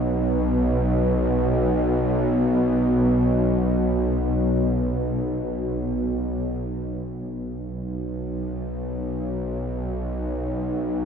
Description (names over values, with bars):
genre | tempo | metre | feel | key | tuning
ambient | free time | none | none | unclear | A4 = 440 Hz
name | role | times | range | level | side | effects
bowed-like drone | drone | 0.0-11.1 s | B1 to B2 | -21 LUFS | equal | built-in reverb
room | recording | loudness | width
wet huge ambient reverb, RT60 8.1 s | in a vast, echoing space | -21 LUFS | side -7 dB against mid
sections
0.0-7.0 A section; 7.0-11.1 B section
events
none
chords
none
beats
free time